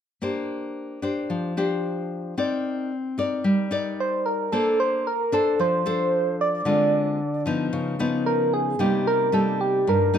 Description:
bossa nova; 112 BPM; 4/4; straight; Bb major; A4 = 440 Hz
nylon-string guitar; accompaniment; 0.2-10.2 s; G2 to D5; -24 LUFS; left 2 dB
soft struck synth lead; melody; 4.0-10.2 s; G4 to D5; -22 LUFS; right 2 dB; chorus
light reverb; close, detailed microphones; -21 LUFS; side -8 dB against mid
0.2-4.5 A section; 4.5-10.2 B section
0.2 Bb69; 2.4 Cm9; 4.5 Bbmaj9; 6.7 Dm7b5; 7.7 Db9; 8.8 Cm7
| 0.23 0.76 1.30 1.84 | 2.37 2.91 3.44 3.98 | 4.51 5.05 5.58 6.12 | 6.66 7.19 7.73 8.26 | 8.80 9.33 9.87

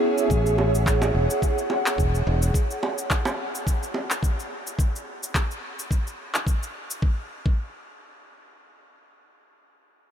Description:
sunset chillout; 107 BPM; 4/4; swing 55% on 16ths; A major; A4 = 444 Hz
ethereal airy pad; sustained chords; 0.0-2.5 s; G#4 to F#5; -28 LUFS; right 2 dB; ensemble chorus, built-in reverb
electronic shaker and handclaps; drums; 0.2-7.0 s; -31 LUFS; left 1 dB
fingered electric bass; bass; 0.3-2.5 s; E1 to A1; -22 LUFS; equal
electronic kick drum; drums; 0.3-7.6 s; -23 LUFS; equal
bongos; percussion; 0.6-4.1 s; -32 LUFS; right 2 dB
moderate huge ambient reverb, RT60 9.0 s; dreamy mix soaked in reverb; -22 LUFS; side -9 dB against mid
0.0-7.0 A section; 7.0-9.3 B section
0.0 Amaj7; 2.5 N.C.
| 0.30 0.86 1.42 1.98 | 2.54 3.10 3.66 4.22 | 4.78 5.34 5.90 6.46 | 7.03 7.59

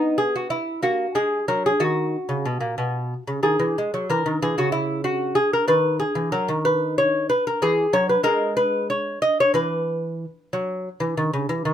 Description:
classical, baroque-style dance for lute; 62 BPM (dotted quarters); 12/8; rubato; A4 = 440 Hz
lute; solo; 0.0-11.7 s; A#2 to D#5; -20 LUFS; equal
light reverb; minimal, uncompressed stereo recording; -20 LUFS; side -10 dB against mid
0.0-11.7 A section
0.0 B; 3.8 E; 5.7 Bmaj13/D#; 7.6 E
0.81 1.80 2.77 | 3.76 4.73 5.69 6.66 | 7.63 8.58 9.56 10.53 | 11.49

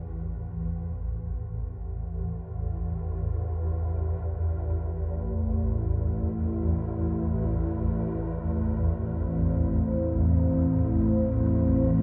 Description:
dark ambient drone; free time; A minor; A4 = 440 Hz
swarming drone; drone; 0.0-12.0 s; A1 to E2; -30 LUFS; equal; built-in reverb
dark analog pad; sustained chords; 4.9-12.0 s; A3 to C5; -30 LUFS; equal; chorus
wet huge ambient reverb, RT60 7.5 s; worn, warbling old tape, cassette tape, warbly pitch drift; -28 LUFS; mono
0.0-12.0 A section
0.0 Am
free time

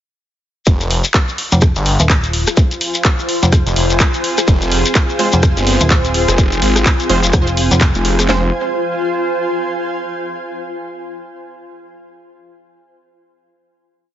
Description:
bass house; 126 BPM; 4/4; swing 59% on 16ths; F minor; A4 = 436 Hz
phased detuned saw bass; bass; 0.7-8.5 s; F1 to Ab1; -16 LUFS; equal; phaser, sidechain pumping
garage drum kit; drums; 0.7-8.4 s; handclaps, kick drum, snare drum; -13 LUFS; equal; small room reverb
garage drum kit; drums; 0.7-8.3 s; handclaps, hi-hat, rim click; -18 LUFS; equal; small room reverb
shekere; percussion; 0.7-8.3 s; -21 LUFS; left 4 dB
granular cloud pad; texture; 1.9-10.2 s; F4 to Ab5; -21 LUFS; left 1 dB; built-in reverb, sidechain pumping
metallic FM bass; bass; 1.5-7.9 s; Eb1 to F1; -15 LUFS; equal; overdrive, sidechain pumping
sweeping resonant pad; sustained chords; 4.6-8.5 s; C4 to Ab4; -22 LUFS; right 2 dB; chorus, sidechain pumping
orchestra-hit-like synth stab; stabs; 5.2-8.5 s; Ab3 to C5; -21 LUFS; right 2 dB; built-in reverb, sidechain pumping, digital delay
light reverb, digital ambience; heavily compressed radio sound, nothing above 7.6 kHz; -12 LUFS; side -11 dB against mid
0.7-8.3 drop; 8.3-10.2 final chord
drop 0.7-8.3
0.7 Fm
| 0.67 1.14 1.62 2.10 | 2.57 3.05 3.52 4.00 | 4.48 4.95 5.43 5.91 | 6.38 6.86 7.33 7.81 | 8.29 8.76 9.24 9.71

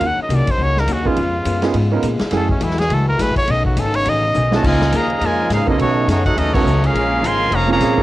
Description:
jazz, big band swing; 208 BPM; 4/4; swing 59% on 8ths; Db major; A4 = 437 Hz
clear trumpet; melody; 0.0-4.6 s; Db4 to Gb5; -20 LUFS; equal
vintage hollow-body jazz guitar; accompaniment; 0.0-8.0 s; Bb2 to Ab4; -27 LUFS; left 6 dB; cassette tape
warm trombone section; sustained chords; 0.0-8.0 s; Db3 to Gb4; -27 LUFS; left 1 dB; cassette tape
upright bass; bass; 0.0-8.0 s; F1 to Cb3; -20 LUFS; equal; transformer saturation
swinging big-band drum kit; drums; 0.0-8.0 s; crash cymbal, hi-hat, kick drum, ride cymbal, snare drum; -23 LUFS; equal; cassette tape
warm grand piano; accompaniment; 1.0-2.5, 4.5-8.0 s; A3 to Bb4; -20 LUFS; right 6 dB; cassette tape
clear trumpet section; melody; 4.5-8.0 s; A3 to C6; -18 LUFS; equal
clear trombone section; second line; 4.5-8.0 s; Bb2 to Gb4; -25 LUFS; right 6 dB; cassette tape
light reverb; home recording on cassette; -14 LUFS; side -16 dB against mid
0.0-4.6 A section; 4.6-8.0 B section
trumpet solo 0.0-4.6; drum fill 4.3; band accent 6.5
0.0 Ebm7; 1.2 Db7; 2.3 Gbm9; 3.5 Cb9; 4.6 Db69; 6.9 Bbm7
| 0.02 0.31 0.59 0.88 | 1.17 1.46 1.75 2.04 | 2.33 2.62 2.90 3.19 | 3.48 3.77 4.06 4.35 | 4.64 4.92 5.21 5.50 | 5.79 6.08 6.37 6.66 | 6.94 7.23 7.52 7.81

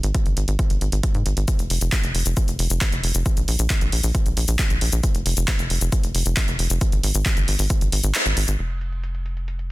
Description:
uplifting trance; 135 BPM; 4/4; straight; F minor; A4 = 438 Hz
tight sequencer bass; bass; 0.0-9.7 s; F1 to Ab2; -22 LUFS; equal; sidechain pumping
punchy analog drum machine; drums; 0.0-9.7 s; crash cymbal, handclaps, hi-hat, shaker; -25 LUFS; left 1 dB; overdrive, low-pass filter on hats, low-pass filter on perc, low-pass filter on snare, low-pass filter on cymbals, low-pass filter on room
electronic kick drum; drums; 0.1-7.8 s; -22 LUFS; equal; overdrive
little or no reverb; dense, heavily limited modern master; -19 LUFS; side -19 dB against mid
0.0-8.6 A section; 8.6-9.7 B section
kick drops out 8.1-8.6; band accent 8.1
0.15 0.59 1.03 | 1.48 1.92 2.37 2.81 | 3.26 3.70 4.15 4.59 | 5.04 5.48 5.92 6.37 | 6.81 7.26 7.70 8.15 | 8.59 9.04 9.48

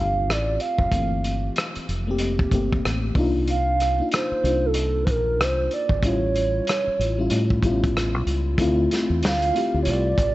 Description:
R&B, neo-soul; 94 BPM; 4/4; swing 61% on 16ths; A4 = 439 Hz
hollow clarinet-like synth lead; melody; 0.0-10.3 s; A4 to F5; -24 LUFS; right 2 dB; chorus
FM electric piano with soft pad layer; accompaniment; 0.0-10.3 s; E3 to G4; -26 LUFS; left 2 dB; chorus, tremolo
deep dub fingered electric bass; bass; 0.0-10.3 s; F1 to A2; -25 LUFS; equal
crunchy breakbeat drum kit; drums; 0.3-10.3 s; hi-hat, kick drum, rim click, snare drum; -26 LUFS; equal
small room ambience; vinyl crackle, nothing above 8.0 kHz; -20 LUFS; side -17 dB against mid
0.0-8.6 A section; 8.6-10.3 B section
0.0 Gm11; 3.2 Cm11; 6.0 A7b13; 8.6 Dm9
0.28 | 0.92 1.56 2.19 2.83 | 3.47 4.11 4.75 5.39 | 6.03 6.66 7.30 7.94 | 8.58 9.22 9.85

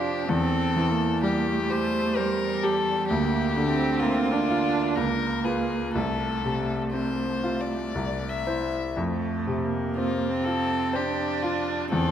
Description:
classical, slow romantic movement for piano trio; 58-65 BPM; 3/4; rubato; F major; A4 = 440 Hz
clear violin; melody; 0.0-12.1 s; F4 to E5; -30 LUFS; left 5 dB
clear cello; second line; 0.0-12.1 s; G3 to D4; -28 LUFS; right 5 dB
bright grand piano; accompaniment; 0.0-12.1 s; C2 to C5; -26 LUFS; left 1 dB
wet scoring stage reverb, RT60 1.8 s; -23 LUFS; side -9 dB against mid
0.0-12.1 A section
0.3 C/E; 3.1 Bb/D; 5.0 Db7; 5.9 F/C; 7.9 C; 9.0 F5
| 0.29 1.22 2.16 | 3.09 4.01 4.96 | 5.94 6.93 7.95 | 8.97 9.97 10.95 | 11.92

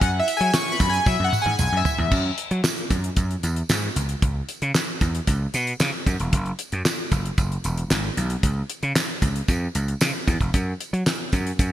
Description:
early-eighties boogie funk; 114 BPM; 4/4; straight; C# minor; A4 = 439 Hz
chorused polysynth; accompaniment; 0.0-2.1 s; E5 to C#6; -23 LUFS; left 1 dB
gritty slap bass; bass; 0.0-11.7 s; E1 to F#3; -24 LUFS; equal; overdrive
damped 70s drum kit; drums; 0.0-11.7 s; crash cymbal, handclaps, hi-hat, kick drum, snare drum, toms; -23 LUFS; equal; gated reverb
tambourine; percussion; 0.3-11.7 s; -35 LUFS; right 7 dB
light reverb, small room ambience; bright 1980s-style digital production; -20 LUFS; side -12 dB against mid
0.0-2.1 A section; 2.1-11.7 B section
analog polysynth solo 0.0-2.1; drum fill 1.1-2.1
0.0 F#9sus4; 2.1 N.C.; 8.4 C#; 10.5 N.C.
| 0.01 0.54 1.07 1.59 | 2.12 2.65 3.17 3.70 | 4.22 4.75 5.28 5.80 | 6.33 6.86 7.38 7.91 | 8.44 8.96 9.49 10.01 | 10.54 11.07 11.59

